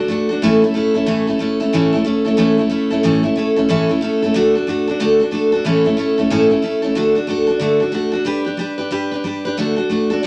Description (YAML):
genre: rock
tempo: 184 BPM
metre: 4/4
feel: swing 62% on 8ths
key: D major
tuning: A4 = 441 Hz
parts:
  - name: picked steel-string acoustic guitar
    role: solo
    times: 0.0-10.3 s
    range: A2 to B4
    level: -17 LUFS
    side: equal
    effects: none
room: moderate studio ambience, RT60 0.5 s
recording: none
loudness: -17 LUFS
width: mono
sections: 0.0-7.0 A section; 7.0-10.3 B section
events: none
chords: 0.4 A; 4.3 D; 5.6 A; 7.0 D; 8.3 G; 9.6 D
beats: 0.09 | 0.41 0.74 1.07 1.40 | 1.72 2.05 2.38 2.71 | 3.03 3.36 3.69 4.01 | 4.34 4.67 4.99 5.32 | 5.64 5.97 6.30 6.62 | 6.95 7.28 7.60 7.93 | 8.26 8.58 8.91 9.24 | 9.56 9.89 10.22